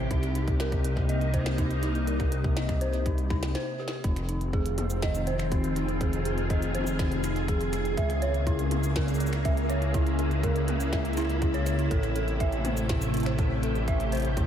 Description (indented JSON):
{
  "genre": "IDM",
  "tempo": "122 BPM",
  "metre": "4/4",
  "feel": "straight",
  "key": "F minor",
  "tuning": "A4 = 441 Hz",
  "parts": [
    { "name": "soft string machine", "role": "sustained chords", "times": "0.0-14.5 s", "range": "C3 to Ab4", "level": "-31 LUFS", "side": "left 1 dB", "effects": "ensemble chorus, vintage 12-bit sampler grit" },
    { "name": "dark detuned saw bass", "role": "bass", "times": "0.0-14.5 s", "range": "F1 to Db2", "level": "-29 LUFS", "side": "equal", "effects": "none" },
    { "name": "dark detuned synth bell", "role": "arpeggios", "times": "0.1-14.5 s", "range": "Eb4 to Fb5", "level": "-33 LUFS", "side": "right 2 dB", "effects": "chorus, phaser, diffuse ambient delay" },
    { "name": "electronic kick drum", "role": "drums", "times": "0.1-14.5 s", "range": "none", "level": "-29 LUFS", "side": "equal", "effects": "overdrive" },
    { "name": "glitchy drum kit", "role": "drums", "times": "0.1-14.5 s", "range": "finger snaps, hi-hat, shaker, snare drum, toms", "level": "-38 LUFS", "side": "left 1 dB", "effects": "overdrive, diffuse ambient delay" }
  ],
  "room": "light reverb, digital ambience",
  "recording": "none",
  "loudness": "-25 LUFS",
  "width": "side -9 dB against mid",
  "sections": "0.0-4.0 A section; 4.0-14.5 B section",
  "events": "break 3.5-4.0; drum fill 3.5-4.0",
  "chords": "0.1 Cm7; 4.0 Fm7; 8.0 Dbm6; 11.9 Am7"
}